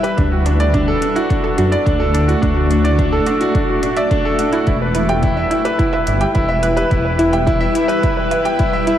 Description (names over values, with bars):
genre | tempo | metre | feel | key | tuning
piano and strings electronica | 107 BPM | 4/4 | straight | unclear | A4 = 441 Hz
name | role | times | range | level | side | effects
granular cloud pad | sustained chords | 0.0-9.0 s | G3 to E5 | -22 LUFS | left 1 dB | built-in reverb, sidechain pumping
analog pluck | arpeggios | 0.0-9.0 s | D4 to F#5 | -23 LUFS | right 2 dB | chorus, sidechain pumping, analog delay
bright concert grand piano | riff | 0.0-9.0 s | D4 to G5 | -18 LUFS | equal | analog delay
electronic hi-hat and woodblock | drums | 0.0-9.0 s | none | -31 LUFS | equal | overdrive, studio reverb
dark detuned saw bass | bass | 0.2-7.7 s | E1 to F#2 | -18 LUFS | equal | sidechain pumping
electronic kick drum | drums | 0.2-8.7 s | none | -20 LUFS | equal | overdrive, studio reverb
room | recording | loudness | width
moderate huge ambient reverb, RT60 7.1 s | dreamy mix soaked in reverb | -13 LUFS | side -11 dB against mid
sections
0.0-9.0 A section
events
none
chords
0.2 Dadd9; 4.7 Em